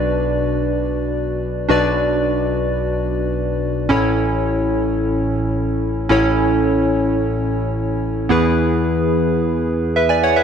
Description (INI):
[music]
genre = pop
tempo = free time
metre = none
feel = none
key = A major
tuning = A4 = 440 Hz
[part]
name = warm analog keys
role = solo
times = 0.0-10.4 s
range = A1 to G#5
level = -16 LUFS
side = equal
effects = chorus
[sound]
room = moderate lush hall reverb, RT60 1.5 s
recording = none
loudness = -16 LUFS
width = side -7 dB against mid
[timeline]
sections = 0.0-10.4 A section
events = none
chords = 0.0 Bm; 3.9 A; 8.3 E